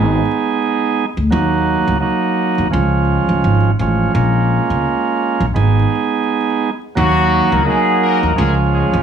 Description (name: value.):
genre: hip hop.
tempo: 85 BPM.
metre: 4/4.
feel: swing 56% on 16ths.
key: Eb minor.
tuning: A4 = 440 Hz.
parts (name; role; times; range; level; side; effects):
bright tonewheel organ; accompaniment; 0.0-9.0 s; F3 to Ab4; -16 LUFS; right 4 dB; high-pass filter, low-pass filter, plate reverb.
upright bass; bass; 0.0-9.0 s; Ab1 to Eb2; -15 LUFS; equal; none.
trumpet with plunger mute; melody; 7.0-8.5 s; Gb4 to Bb4; -17 LUFS; left 4 dB; high-pass filter, low-pass filter, plate reverb.
dark analog pad; sustained chords; 7.5-9.0 s; Ab4 to Eb6; -25 LUFS; right 1 dB; chorus, high-pass filter, low-pass filter, plate reverb.
muted trumpet section; stabs; 7.0-9.0 s; Gb3 to Bb4; -24 LUFS; left 8 dB; high-pass filter, low-pass filter, plate reverb, analog delay.
room: light reverb.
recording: vinyl crackle, studio reverb.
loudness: -13 LUFS.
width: side -8 dB against mid.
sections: 0.0-7.0 A section; 7.0-9.0 B section.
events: break 6.3-7.0.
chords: 0.0 Abm; 1.3 Ebm; 2.7 Db; 4.1 Bbm7; 5.6 Abm; 7.0 Ebm; 8.4 Db.